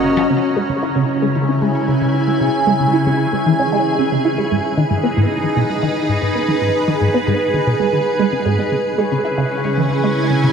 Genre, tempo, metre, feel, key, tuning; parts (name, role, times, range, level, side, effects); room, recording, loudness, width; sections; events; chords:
ambient, sequencer-driven space music; 114 BPM; 4/4; straight; C# dorian; A4 = 438 Hz
evolving wavetable pad; sustained chords; 0.0-10.5 s; C#3 to A#5; -17 LUFS; right 1 dB; ensemble chorus, built-in reverb, phaser
concert harp; arpeggios; 0.0-10.5 s; F#3 to C#6; -28 LUFS; left 4 dB; auto-pan, analog delay
resonant blip pluck; riff; 0.0-10.5 s; G#2 to E4; -19 LUFS; right 1 dB; phaser, lush chorus, analog delay
bubbling stepped-filter texture; texture; 0.0-10.5 s; B4 to D#5; -30 LUFS; equal; chorus, built-in reverb
wet huge ambient reverb, RT60 7.9 s; -14 LUFS; side -6 dB against mid
0.3-10.5 A section
fade-in on harp 0.3-10.5; fade-in on synth texture 0.3-10.5; filter sweep on synth arpeggio sound 0.3-10.5
0.3 C#m; 4.5 G#m; 8.7 C#m